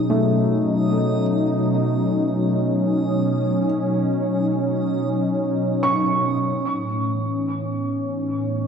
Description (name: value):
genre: ambient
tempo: free time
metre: none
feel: none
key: unclear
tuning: A4 = 439 Hz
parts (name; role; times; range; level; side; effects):
- warm analog pad; sustained chords; 0.0-8.7 s; A2 to D#4; -20 LUFS; equal; chorus
- felt-muted upright piano; arpeggios; 0.0-8.7 s; A3 to C#6; -26 LUFS; equal; diffuse ambient delay
- backwards swelling texture; texture; 0.0-6.7 s; D#6; -43 LUFS; right 2 dB; built-in reverb
room: wet concert hall reverb, RT60 1.9 s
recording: dark, warm production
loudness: -19 LUFS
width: side -6 dB against mid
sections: 0.0-6.7 A section; 6.7-8.7 B section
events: fade-out on synth texture 0.0-6.7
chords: 0.0 B9; 6.7 A